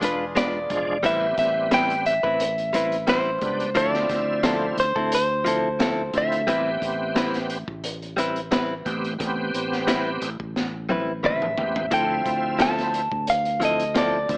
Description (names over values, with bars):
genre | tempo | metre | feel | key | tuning
straight-eighth soul blues | 88 BPM | 4/4 | swing 53% on 16ths | A minor | A4 = 440 Hz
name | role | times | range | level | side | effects
clear horn section | sustained chords | 0.0-1.0 s | D4 to G#4 | -36 LUFS | equal | plate reverb
direct-recorded clean electric guitar | stabs | 0.0-14.2 s | F3 to B4 | -25 LUFS | left 1 dB | slapback echo
fingered electric bass | bass | 0.0-14.4 s | E1 to D2 | -32 LUFS | equal | none
crunchy breakbeat drum kit | drums | 0.0-14.4 s | hi-hat, kick drum, snare drum, toms | -28 LUFS | equal | none
direct-recorded clean electric guitar | melody | 0.4-14.4 s | C5 to A5 | -22 LUFS | equal | none
bright tonewheel organ | accompaniment | 0.7-14.4 s | F3 to G4 | -28 LUFS | right 1 dB | slow rotary speaker, chorus vibrato
room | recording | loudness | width
moderate club ambience, RT60 0.5 s | small speaker sound | -21 LUFS | side -26 dB against mid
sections
0.0-1.0 A section; 1.0-14.4 B section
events
clean electric guitar solo 0.0-1.0; drum fill 10.6-11.9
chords
0.0 E7b9; 1.0 Am9; 3.8 Dm9; 6.5 Am9; 11.9 Dm9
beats
0.36 | 1.04 1.72 2.40 3.08 | 3.76 4.44 5.12 5.80 | 6.48 7.16 7.84 8.52 | 9.20 9.88 10.56 11.24 | 11.92 12.60 13.28 13.96